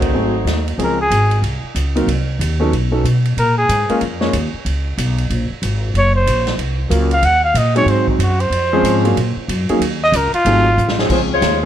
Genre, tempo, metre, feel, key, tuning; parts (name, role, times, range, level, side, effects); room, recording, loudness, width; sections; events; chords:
jazz, big band swing; 186 BPM; 4/4; swing 62% on 8ths; Db major; A4 = 440 Hz
mellow saxophone section; melody; 0.0-0.7, 11.0-11.6 s; Gb3 to Db5; -19 LUFS; left 1 dB
warm concert grand piano; accompaniment; 0.0-4.3, 6.9-11.7 s; Eb3 to Db5; -19 LUFS; equal
upright bass; bass; 0.0-11.7 s; Gb1 to Cb3; -18 LUFS; equal
swinging big-band drum kit; drums; 0.0-11.5 s; crash cymbal, hi-hat, kick drum, ride cymbal, snare drum; -25 LUFS; right 1 dB
mellow trumpet; melody; 0.8-11.0 s; Eb4 to Gb5; -16 LUFS; equal
light reverb; dark, warm production; -14 LUFS; side -10 dB against mid
0.8-11.1 A section
trumpet solo 0.8-11.1; drum fill 10.8-11.1
0.1 Ab7b9; 0.8 Dbmaj7; 2.1 Cdim; 2.7 Cb9; 3.4 Bbm7; 4.7 Db5; 5.9 Gbmaj7; 7.2 Ebm; 7.9 Ab7; 8.5 Dbmaj7; 9.2 Gb69; 9.8 Dbsus2; 10.5 Ab7b9; 11.1 Dbmaj7